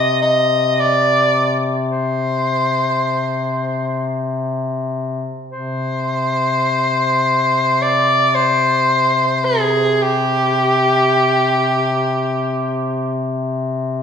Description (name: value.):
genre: caucasian folk, Caucasian lament.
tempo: free time.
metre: none.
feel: none.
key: C minor.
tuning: A4 = 440 Hz.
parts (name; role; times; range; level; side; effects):
clear soprano saxophone; melody; 0.0-13.3 s; G4 to Eb5; -16 LUFS; equal; none.
mellow duduk; drone; 0.0-14.0 s; C3; -20 LUFS; left 3 dB; none.
room: wet recital hall reverb, RT60 1.6 s.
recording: recorded in a church or concert hall.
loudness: -15 LUFS.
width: side -7 dB against mid.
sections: 0.0-5.5 A section; 5.5-14.0 B section.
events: none.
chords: none.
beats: free time.